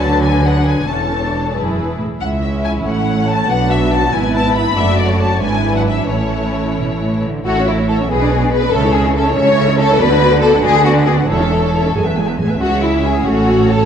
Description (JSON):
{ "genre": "quick classical-period movement for string orchestra", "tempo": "92 BPM (dotted quarters)", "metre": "6/8", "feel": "rubato", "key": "A major", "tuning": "A4 = 440 Hz", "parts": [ { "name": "warm studio violin section", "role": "melody", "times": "0.0-13.9 s", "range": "B4 to B5", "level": "-22 LUFS", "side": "left 5 dB", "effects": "none" }, { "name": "warm studio violin section", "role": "second line", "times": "0.0-13.9 s", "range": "E4 to E5", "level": "-18 LUFS", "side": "left 3 dB", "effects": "none" }, { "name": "warm studio viola section", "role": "accompaniment", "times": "0.0-13.9 s", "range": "E3 to C#5", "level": "-19 LUFS", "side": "right 2 dB", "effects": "none" }, { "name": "rich chamber cello section", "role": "bass", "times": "0.0-13.9 s", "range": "C#2 to D3", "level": "-19 LUFS", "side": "right 2 dB", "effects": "none" }, { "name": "rich studio double bass section", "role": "bass", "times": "0.0-13.9 s", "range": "E1 to D2", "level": "-20 LUFS", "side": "right 2 dB", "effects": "none" } ], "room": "moderate concert hall reverb, RT60 2.2 s", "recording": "dark, warm production", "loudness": "-12 LUFS", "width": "side -8 dB against mid", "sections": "0.0-7.5 A section; 7.5-13.9 A section", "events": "none", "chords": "0.0 Bm/D; 0.9 A/E; 1.5 E; 2.2 C#m; 2.9 F#m/A; 3.5 Bm; 4.1 E/G#; 4.8 D/F#; 5.4 E7/G#; 6.1 A; 8.1 G#dim/B; 8.7 A/C#; 10.0 Bm/D; 11.3 A/E; 12.0 E; 12.6 C#m; 13.3 F#m/A", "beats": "0.23 | 0.89 1.55 | 2.21 2.85 | 3.50 4.13 | 4.77 5.42 | 6.09 6.78 | 7.46 8.10 | 8.74 9.38 | 10.01 10.65 | 11.29 11.95 | 12.61 13.27" }